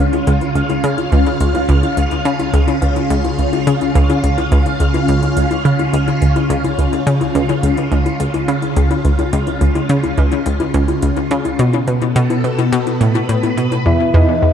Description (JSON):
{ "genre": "ambient, sequencer-driven space music", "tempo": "106 BPM", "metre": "4/4", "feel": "straight", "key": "Db major", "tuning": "A4 = 445 Hz", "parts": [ { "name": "phased string machine", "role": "sustained chords", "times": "0.0-14.5 s", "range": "B2 to F#5", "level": "-18 LUFS", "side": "equal", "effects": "ensemble chorus, phaser" }, { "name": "analog pluck", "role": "riff", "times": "0.0-14.5 s", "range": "Db2 to Db3", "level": "-15 LUFS", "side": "equal", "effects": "chorus, ping-pong delay" }, { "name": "electronic hi-hat and bongos", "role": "percussion", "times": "0.1-13.8 s", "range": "none", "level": "-25 LUFS", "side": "left 2 dB", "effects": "ping-pong delay" }, { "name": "soft octave-layered synth lead", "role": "melody", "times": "13.9-14.5 s", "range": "D#5 to E5", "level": "-16 LUFS", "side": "equal", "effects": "chorus, tremolo, ping-pong delay" }, { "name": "round analog bass", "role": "bass", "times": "13.9-14.5 s", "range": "none", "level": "barely audible", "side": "none", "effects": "none" } ], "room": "moderate plate reverb, RT60 2.7 s", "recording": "echo-heavy mix, cassette tape", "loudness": "-13 LUFS", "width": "side -8 dB against mid", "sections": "0.0-13.9 A section", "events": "filter sweep on synth arpeggio sound 0.0-13.9", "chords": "0.0 Db; 11.6 Asus2; 13.9 Eadd9" }